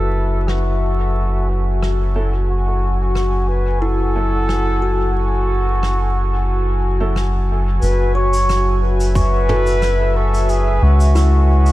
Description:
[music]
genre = ambient dub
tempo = 90 BPM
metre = 4/4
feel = swing 54% on 16ths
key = F# minor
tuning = A4 = 439 Hz
[part]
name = trumpet with bucket mute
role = melody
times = 0.0-11.7 s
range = F#4 to C#5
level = -22 LUFS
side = equal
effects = dub echo
[part]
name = warm analog pad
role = sustained chords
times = 0.0-11.7 s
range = F#4 to G#5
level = -25 LUFS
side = left 1 dB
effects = chorus
[part]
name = kalimba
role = arpeggios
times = 0.0-11.7 s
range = E4 to C#6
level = -28 LUFS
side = equal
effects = low-pass filter, dub echo
[part]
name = soft dub sub bass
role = bass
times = 0.0-11.7 s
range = F#1 to C#2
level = -16 LUFS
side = equal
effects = tube saturation
[part]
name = vintage brush drum kit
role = drums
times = 0.5-11.7 s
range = rim click, shaker, toms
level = -30 LUFS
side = equal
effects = low-pass filter on toms, low-pass filter on snare, low-pass filter on perc, low-pass filter on room, dub echo
[part]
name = warm upright piano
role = stabs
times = 2.2-9.7 s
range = F#3 to A4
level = -30 LUFS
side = right 2 dB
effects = vintage 12-bit sampler grit, dub echo
[part]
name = electronic kick drum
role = drums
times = 9.2-9.3 s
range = none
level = -18 LUFS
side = equal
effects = none
[sound]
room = light reverb, small room ambience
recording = vinyl crackle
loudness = -15 LUFS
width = side -16 dB against mid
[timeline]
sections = 0.0-7.8 A section; 7.8-11.7 B section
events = filter sweep on kalimba 0.0-7.8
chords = 0.0 F#m7; 7.8 F#7(no3)

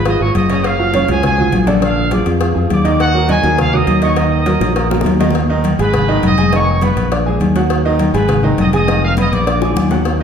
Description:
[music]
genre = latin, salsa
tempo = 204 BPM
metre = 4/4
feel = straight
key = Eb minor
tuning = A4 = 439 Hz
[part]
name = bright trumpet section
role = melody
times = 0.0-9.9 s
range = Gb4 to Eb6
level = -19 LUFS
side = right 1 dB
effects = none
[part]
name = fingered electric bass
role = bass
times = 0.0-10.2 s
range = F1 to F2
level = -16 LUFS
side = equal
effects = none
[part]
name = bright upright piano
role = accompaniment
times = 0.1-10.2 s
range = Db3 to D6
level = -17 LUFS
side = right 2 dB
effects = none
[part]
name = congas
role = percussion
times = 0.1-10.2 s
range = none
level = -19 LUFS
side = left 3 dB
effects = none
[part]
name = cowbell and bongos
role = percussion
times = 0.1-10.2 s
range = none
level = -22 LUFS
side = left 4 dB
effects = none
[sound]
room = wet large studio reverb, RT60 1.2 s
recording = heard from further back in the room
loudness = -12 LUFS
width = side -7 dB against mid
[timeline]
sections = 0.0-5.3 A section; 5.3-10.2 B section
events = drum fill 4.6-5.3, 9.6-10.1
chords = 0.0 Db; 0.6 Gbmaj9; 1.8 Bb7; 3.0 Ebm; 5.3 Abm; 6.5 Bmaj9#11/E#; 7.1 Bb7; 7.7 Ebm; 8.3 Abm; 8.9 Bmaj7#11/E#; 9.5 Bb7

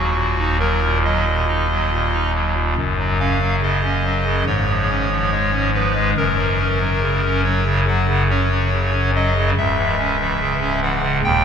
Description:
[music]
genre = classical, chorale-style piece for pipe organ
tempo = 70 BPM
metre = 4/4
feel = rubato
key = unclear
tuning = A4 = 440 Hz
[part]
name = pipe organ, clarinet reed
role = solo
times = 0.0-11.4 s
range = C#1 to G5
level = -16 LUFS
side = equal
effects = none
[sound]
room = wet cathedral reverb, RT60 5.0 s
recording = minimal, uncompressed stereo recording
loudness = -16 LUFS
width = side -7 dB against mid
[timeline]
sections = 0.0-11.4 A section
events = none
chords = 0.0 Ebm; 2.8 Gb5; 4.5 Db/Ab; 6.2 Gb; 9.6 C#madd11

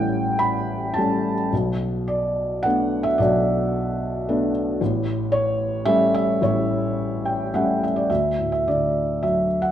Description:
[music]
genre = classical, lyrical solo piano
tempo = 108 BPM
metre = 3/4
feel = rubato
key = D major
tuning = A4 = 440 Hz
[part]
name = felt-muted upright piano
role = solo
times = 0.0-9.7 s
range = A1 to B5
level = -20 LUFS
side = equal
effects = none
[sound]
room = moderate recital hall reverb, RT60 1.3 s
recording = dark, warm production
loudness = -20 LUFS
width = side -10 dB against mid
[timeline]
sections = 0.0-8.1 A section; 8.1-9.7 B section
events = felt piano fill 7.0-8.1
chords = 0.0 A7; 1.5 Bm7; 4.8 A7; 8.1 D

